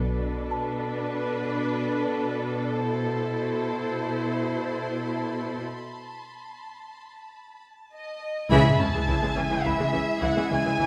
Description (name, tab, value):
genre	cinematic, suspense film score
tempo	105 BPM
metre	5/4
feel	straight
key	B phrygian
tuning	A4 = 438 Hz
part	warm studio violin section	melody	0.0-10.9 s	B4 to B5	-34 LUFS	equal	none
part	warm studio violin section	second line	0.0-10.9 s	G#4 to E5	-34 LUFS	equal	none
part	clear studio viola section	accompaniment	0.0-10.9 s	E3 to E4	-34 LUFS	equal	none
part	rich studio cello section	bass	0.0-10.9 s	B2 to C#3	-33 LUFS	equal	none
part	warm studio double bass section	bass	0.0-0.5, 8.5-10.9 s	B1 to C#2	-31 LUFS	equal	none
part	music box	texture	0.5-2.2, 9.7-10.9 s	A5 to B5	-38 LUFS	equal	none
part	warm studio violin section	texture	2.8-10.9 s	A5 to G#6	-44 LUFS	equal	none
part	mellow French horn section	sustained chords	8.5-10.9 s	G#3 to E4	-32 LUFS	equal	none
part	timpani	percussion	8.5-9.3 s	none	barely audible	none	none
part	sub drop	sound effects	8.6-10.9 s	none	-34 LUFS	equal	none
room	moderate scoring stage reverb, RT60 1.4 s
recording	none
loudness	-26 LUFS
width	mono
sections	0.0-8.5 A section; 8.5-10.9 B section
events	break 5.7-8.5; band accent 8.5-9.1; impact 8.5-10.9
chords	0.0 Bm7; 2.8 Amadd9/B; 5.7 B7(no3); 8.5 C#m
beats	0.51 1.08 1.65 2.23 | 2.80 3.37 3.94 4.51 5.08 | 5.65 6.22 6.80 7.37 7.94 | 8.51 9.08 9.65 10.22 10.80